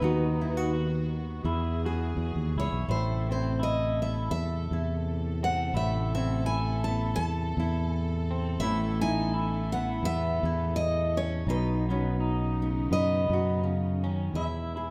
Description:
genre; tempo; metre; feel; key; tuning
acoustic folk duo or small band; 84 BPM; 4/4; swing 56% on 8ths; unclear; A4 = 440 Hz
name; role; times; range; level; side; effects
picked steel-string acoustic guitar; melody; 0.0-14.9 s; B4 to A5; -35 LUFS; equal; none
nylon-string guitar; accompaniment; 0.0-14.9 s; E2 to G#4; -37 LUFS; equal; none
dark chamber string section; sustained chords; 0.0-14.9 s; B2 to A4; -43 LUFS; equal; none
electric guitar through a small old amp; arpeggios; 0.0-14.9 s; B3 to F#4; -38 LUFS; equal; harmonic tremolo
fingered electric bass; bass; 0.0-14.9 s; A1 to F#2; -32 LUFS; equal; none
room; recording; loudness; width
moderate recital hall reverb, RT60 1.6 s; none; -29 LUFS; mono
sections
0.0-2.9 A section; 2.9-14.3 B section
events
steel-string acoustic guitar solo 0.0-2.9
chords
0.0 B/D#; 1.5 E; 2.9 Amadd9; 8.6 Asus2; 11.5 Badd9; 14.3 E

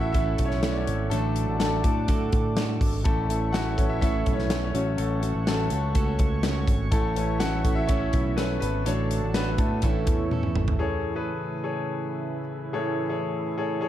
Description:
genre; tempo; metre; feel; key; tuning
piano-driven pop; 124 BPM; 4/4; straight; A major; A4 = 441 Hz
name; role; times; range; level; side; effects
bright grand piano; accompaniment; 0.0-13.9 s; A2 to F#5; -30 LUFS; left 3 dB; none
chorused pulse-width pad; sustained chords; 0.0-13.9 s; C#3 to D6; -35 LUFS; right 3 dB; none
fingerpicked plugged-in steel-string acoustic guitar; riff; 0.0-11.3 s; A2 to A4; -31 LUFS; right 4 dB; none
picked electric bass with an envelope filter; bass; 0.0-10.8 s; G#1 to A2; -28 LUFS; equal; none
modern studio drum kit; drums; 0.1-10.8 s; hi-hat, kick drum, snare drum, toms; -26 LUFS; equal; none
room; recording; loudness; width
light reverb, studio ambience; dark, warm production; -23 LUFS; side -12 dB against mid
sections
0.0-10.8 A section; 10.8-13.9 B section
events
grand piano solo 0.0-10.8; drum fill 10.3-10.8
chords
0.0 A; 1.1 D/A; 3.1 A; 4.7 F#m/A; 6.9 A; 8.9 D/A; 9.8 A; 10.8 Amaj7

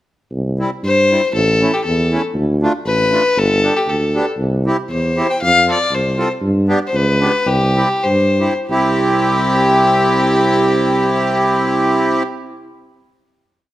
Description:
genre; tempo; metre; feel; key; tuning
alpine folk, alpine dance band; 85-120 BPM; 2/4; swing 55% on 8ths, rubato; C major; A4 = 441 Hz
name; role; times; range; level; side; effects
warm tuba; bass; 0.3-12.2 s; G1 to G2; -18 LUFS; right 1 dB; none
accordion; accompaniment; 0.6-12.2 s; G3 to A4; -18 LUFS; right 1 dB; none
rich fiddle; melody; 0.9-12.2 s; G4 to G5; -16 LUFS; left 2 dB; none
room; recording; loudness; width
moderate recital hall reverb, RT60 1.4 s; none; -13 LUFS; side -14 dB against mid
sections
0.3-8.7 A section; 8.7-11.5 final chord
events
slowing down 6.4-8.7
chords
0.3 C; 1.3 A; 2.3 Dm; 3.4 G; 4.4 C; 5.4 F; 6.4 G; 7.5 C

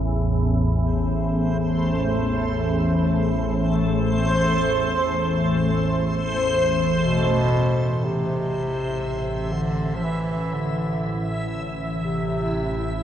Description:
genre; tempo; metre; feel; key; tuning
dark ambient drone; free time; none; none; A minor; A4 = 441 Hz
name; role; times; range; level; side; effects
organ-like drone; drone; 0.0-13.0 s; A1 to E2; -22 LUFS; equal; ensemble chorus, built-in reverb
backwards swelling texture; texture; 1.4-13.0 s; A3 to E5; -25 LUFS; equal; built-in reverb
warm bass clarinet; melody; 7.0-13.0 s; B2 to F3; -25 LUFS; equal; diffuse ambient delay
room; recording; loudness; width
wet huge ambient reverb, RT60 9.1 s; nothing above 10.8 kHz; -20 LUFS; side -10 dB against mid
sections
0.0-8.0 A section; 8.0-13.0 B section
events
none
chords
0.0 Am

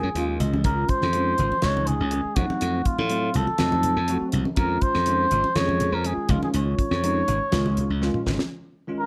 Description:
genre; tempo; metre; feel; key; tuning
electric jazz fusion; 122 BPM; 4/4; straight; Db major; A4 = 440 Hz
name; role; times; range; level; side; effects
trumpet with cup mute; melody; 0.0-9.1 s; F4 to Db5; -28 LUFS; equal; none
bell-like tine electric piano; accompaniment; 0.0-9.1 s; Eb3 to F5; -31 LUFS; equal; ensemble chorus
glassy slap bass; bass; 0.0-8.4 s; Ab1 to A2; -28 LUFS; equal; none
damped 70s drum kit; drums; 0.2-8.5 s; hi-hat, kick drum, snare drum, toms; -29 LUFS; equal; none
congas; percussion; 0.4-8.5 s; none; -33 LUFS; equal; none
room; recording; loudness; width
light reverb; none; -23 LUFS; mono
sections
0.0-8.5 A section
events
tine electric piano fill 0.0-0.7; drum fill 8.0-8.5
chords
0.0 Gb5; 0.7 Db; 2.4 F7b9; 4.6 Dbadd9; 8.5 C#add9

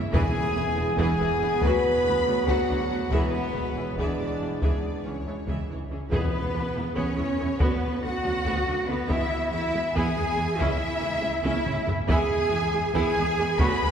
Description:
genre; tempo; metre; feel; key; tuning
cinematic, epic orchestral film score; 281 BPM (eighths); 7/8; straight; E mixolydian; A4 = 440 Hz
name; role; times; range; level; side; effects
rich studio violin section; melody; 0.1-13.9 s; D4 to B5; -38 LUFS; left 3 dB; none
clear symphonic violin section; second line; 0.1-13.9 s; B4 to B5; -35 LUFS; left 2 dB; none
clear symphonic viola section; accompaniment; 0.1-13.8 s; D3 to G#4; -32 LUFS; right 1 dB; none
warm French horn section; sustained chords; 0.1-13.7 s; B3 to B4; -29 LUFS; left 1 dB; none
warm trombone section; sustained chords; 0.1-13.7 s; D3 to B3; -36 LUFS; right 3 dB; none
rich studio cello section; bass; 0.1-13.9 s; C#2 to B4; -30 LUFS; right 2 dB; none
rich symphonic double bass section; bass; 0.1-13.7 s; E1 to E2; -32 LUFS; right 1 dB; none
taiko ensemble; drums; 0.1-13.9 s; none; -30 LUFS; equal; none
timpani; percussion; 0.1-0.7, 6.1-6.7 s; E2; -34 LUFS; left 1 dB; none
concert flute; second line; 6.1-13.9 s; B4 to B5; -33 LUFS; left 1 dB; none
room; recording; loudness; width
wet cathedral reverb, RT60 4.9 s; recorded in a church or concert hall; -23 LUFS; side -8 dB against mid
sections
0.0-6.1 A section; 6.1-13.9 B section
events
drum fill 11.4-12.1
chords
0.1 E; 1.6 Bm/D; 3.1 E; 4.6 C#m; 6.1 E; 7.6 Bm/D; 9.1 E; 10.6 C#m; 12.1 E

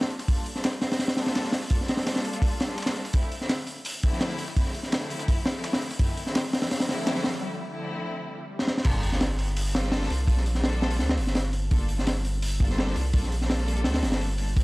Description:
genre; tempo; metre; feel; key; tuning
drum and bass, jungle; 168 BPM; 4/4; straight; G minor; A4 = 440 Hz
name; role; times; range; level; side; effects
rich studio string section; sustained chords; 0.0-14.6 s; D3 to A4; -34 LUFS; left 1 dB; vintage 12-bit sampler grit, low-pass filter
crunchy breakbeat drum kit; drums; 0.0-14.6 s; crash cymbal, hi-hat, kick drum, snare drum; -25 LUFS; equal; none
dusty soul sampler-style drum kit; drums; 0.1-7.4 s; hi-hat, snare drum; -40 LUFS; equal; none
riser, swell and sub drop; sound effects; 5.7-10.3 s; none; -40 LUFS; equal; none
saturated sub bass; bass; 8.9-14.6 s; D1 to D2; -27 LUFS; equal; none
room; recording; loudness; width
small room ambience; dry, gritty hardware recording; -24 LUFS; side -22 dB against mid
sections
0.0-8.9 A section; 8.9-14.6 B section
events
build-up 0.0-8.9; filter sweep on string section 0.0-8.9; break 7.4-8.9; drum fill 8.6; drop 8.9-14.6; impact 8.9-10.3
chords
0.0 Gm7; 3.1 Dm7; 8.9 Gm7

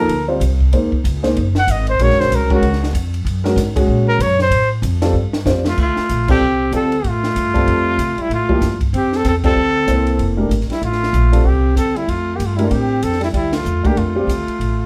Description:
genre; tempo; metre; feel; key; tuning
modal jazz; 190 BPM; 4/4; swing 61% on 8ths; D minor from 5.8 s; A4 = 441 Hz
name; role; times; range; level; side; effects
breathy trumpet; melody; 0.0-14.9 s; E4 to Gb5; -21 LUFS; equal; none
warm concert grand piano; accompaniment; 0.0-14.3 s; F3 to C5; -22 LUFS; equal; none
upright bass; bass; 0.0-14.9 s; Eb1 to C3; -21 LUFS; equal; none
compact cocktail drum kit; drums; 0.1-14.7 s; crash cymbal, hi-hat, kick drum, ride cymbal, snare drum; -26 LUFS; equal; none
clear alto saxophone; second line; 5.7-14.9 s; G3 to C4; -25 LUFS; equal; none
room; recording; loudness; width
moderate studio reverb, RT60 0.5 s; heard from further back in the room; -17 LUFS; mono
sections
0.0-5.8 A section; 5.8-14.9 B section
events
trumpet solo 0.0-5.8; drum fill 5.1-5.8; band accent 6.2, 9.4, 13.5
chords
0.0 Gm11; 0.7 Ebm11; 4.5 Fadd9; 5.8 Dm11

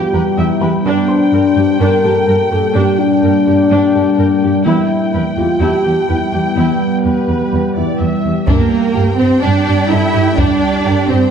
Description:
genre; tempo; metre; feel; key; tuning
cinematic, hybrid orchestral and electronic film score; 126 BPM; 4/4; straight; unclear; A4 = 436 Hz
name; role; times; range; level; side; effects
rich symphonic viola section; accompaniment; 0.0-11.3 s; Bb3 to G5; -22 LUFS; right 1 dB; none
deep dark ambient pad; sustained chords; 0.0-11.3 s; G3 to G5; -18 LUFS; equal; chorus, built-in reverb
mellow French horn section; sustained chords; 0.0-8.2 s; B3 to Bb4; -14 LUFS; left 3 dB; none
felt-muted upright piano; texture; 0.0-11.3 s; E4 to C6; -29 LUFS; left 1 dB; tape echo
dark symphonic cello section; bass; 0.1-11.3 s; E2 to E4; -17 LUFS; right 3 dB; none
rich symphonic violin section; melody; 8.5-11.3 s; Bb4 to E5; -23 LUFS; left 6 dB; none
clear symphonic violin section; second line; 8.5-11.3 s; D4 to G5; -22 LUFS; left 1 dB; none
rich symphonic double bass section; bass; 8.5-11.2 s; G2; -17 LUFS; right 4 dB; none
taiko ensemble; drums; 8.5-10.8 s; none; -18 LUFS; equal; none
room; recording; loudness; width
moderate concert hall reverb, RT60 2.2 s; dark, warm production; -11 LUFS; side -7 dB against mid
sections
0.0-8.5 A section; 8.5-11.3 A section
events
none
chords
0.0 Em; 0.9 Gm; 4.7 Em; 8.5 Gm

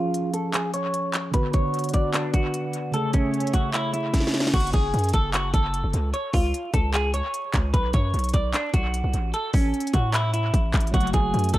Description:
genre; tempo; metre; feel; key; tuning
hip hop, trap; 150 BPM; 4/4; half-time; F# minor; A4 = 440 Hz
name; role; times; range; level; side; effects
semi-hollow electric guitar; melody; 0.0-11.6 s; C#4 to D5; -27 LUFS; right 1 dB; lush chorus, low-pass filter, dub echo
tine electric piano; accompaniment; 0.0-4.6, 10.9-11.6 s; C#3 to G#4; -28 LUFS; equal; medium stereo tremolo, low-pass filter, dub echo
trap drum kit; drums; 0.1-11.6 s; crash cymbal, handclaps, hi-hat, kick drum, snare drum; -24 LUFS; equal; dub echo
warm analog pad; sustained chords; 1.3-4.5 s; A3 to F#5; -35 LUFS; equal; chorus, low-pass filter
distorted 808-style bass; bass; 4.5-11.6 s; F#1 to A2; -25 LUFS; equal; distortion
room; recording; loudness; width
little or no reverb; echo-heavy mix, vinyl crackle; -21 LUFS; side -15 dB against mid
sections
0.0-4.5 A section; 4.5-11.6 B section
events
filter sweep 0.0-4.5; drum fill 4.1-4.5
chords
0.0 C#; 1.3 Bm; 2.9 Amaj7; 4.5 F#madd9; 6.1 C#; 7.7 B5; 9.3 A; 10.9 F#madd9

